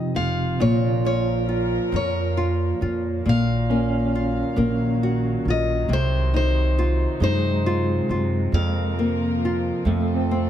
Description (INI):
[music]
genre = acoustic folk-pop ballad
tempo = 45 BPM (dotted quarters)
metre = 6/8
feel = straight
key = Bb minor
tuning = A4 = 440 Hz
[part]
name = picked steel-string acoustic guitar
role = melody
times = 0.0-9.8 s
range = C5 to F5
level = -28 LUFS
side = left 3 dB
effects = none
[part]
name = nylon-string guitar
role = accompaniment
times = 0.0-10.5 s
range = F2 to Gb4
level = -24 LUFS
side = left 2 dB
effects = none
[part]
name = electric guitar through a small old amp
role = arpeggios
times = 0.0-10.5 s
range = C3 to F4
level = -27 LUFS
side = right 3 dB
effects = tremolo
[part]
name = upright bass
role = bass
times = 0.1-10.5 s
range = F1 to Gb2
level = -24 LUFS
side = right 1 dB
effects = none
[part]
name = warm chamber string section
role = sustained chords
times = 0.6-10.5 s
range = Bb2 to F5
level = -31 LUFS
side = right 1 dB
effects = none
[sound]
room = light reverb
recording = close, detailed microphones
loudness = -20 LUFS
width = side -10 dB against mid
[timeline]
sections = 0.6-10.5 A section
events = none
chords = 0.0 F5; 0.6 Bbm; 3.3 Ebmadd9/Bb; 5.9 Cdim; 8.5 Fsus4; 9.9 F